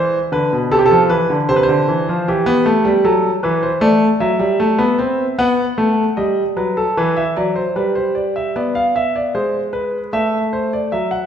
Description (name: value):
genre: classical, baroque-style two-part invention for grand piano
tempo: 76 BPM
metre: 4/4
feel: straight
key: A minor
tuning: A4 = 440 Hz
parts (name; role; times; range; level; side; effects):
- clear concert grand piano; solo; 0.0-11.3 s; B2 to F#5; -14 LUFS; equal; none
room: wet recital hall reverb, RT60 1.4 s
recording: heard from further back in the room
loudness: -14 LUFS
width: side -8 dB against mid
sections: 0.0-8.6 A section; 8.6-11.3 B section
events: none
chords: 0.0 E7(no3); 0.7 Am/C (rootless); 2.3 Em; 3.8 Am; 5.4 B7; 7.0 Em; 8.6 E7/B (rootless); 10.1 Am